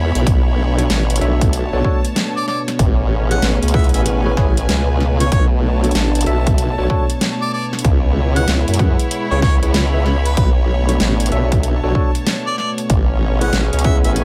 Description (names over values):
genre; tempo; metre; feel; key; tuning
glitch hop; 95 BPM; 4/4; swing 64% on 16ths; B dorian; A4 = 440 Hz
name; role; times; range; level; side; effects
warm analog pad; sustained chords; 0.0-14.2 s; B2 to G#4; -27 LUFS; equal; chorus, vintage 12-bit sampler grit, sidechain pumping
formant-sweep wobble bass; bass; 0.0-14.2 s; A1 to F#2; -19 LUFS; equal; chorus, overdrive
rich studio string section; texture; 0.0-14.2 s; C#4 to B5; -30 LUFS; equal; sidechain pumping
dubstep drum kit; drums; 0.2-14.2 s; hi-hat, snare drum; -24 LUFS; equal; none
electronic kick drum; drums; 0.3-14.0 s; none; -18 LUFS; equal; none
tine electric piano; stabs; 0.8-14.2 s; D4 to F#5; -27 LUFS; equal; sidechain pumping, tape echo
warm harmonica; melody; 2.4-14.1 s; B4 to F#5; -27 LUFS; equal; none
room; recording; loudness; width
little or no reverb; none; -16 LUFS; mono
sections
0.0-14.2 A section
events
none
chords
0.3 Bm9; 2.8 Amaj9; 5.3 Bm9; 7.8 C#m7; 10.4 Bm9; 12.9 Amaj9